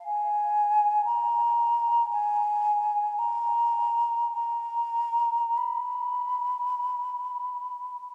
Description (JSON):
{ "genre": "classical, free, expressive piece for unaccompanied flute", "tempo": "48-63 BPM", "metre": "4/4", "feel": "rubato", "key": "unclear", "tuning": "A4 = 440 Hz", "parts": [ { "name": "mellow hollow concert flute", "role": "solo", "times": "0.1-8.0 s", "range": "Ab5 to B5", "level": "-27 LUFS", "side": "equal", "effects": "none" } ], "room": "wet cathedral reverb, RT60 5.6 s", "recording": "none", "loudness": "-27 LUFS", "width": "mono", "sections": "0.0-8.1 A section", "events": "none", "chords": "none", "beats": "| 0.08 1.08 2.09 3.17 | 4.33 5.57 6.79 7.97" }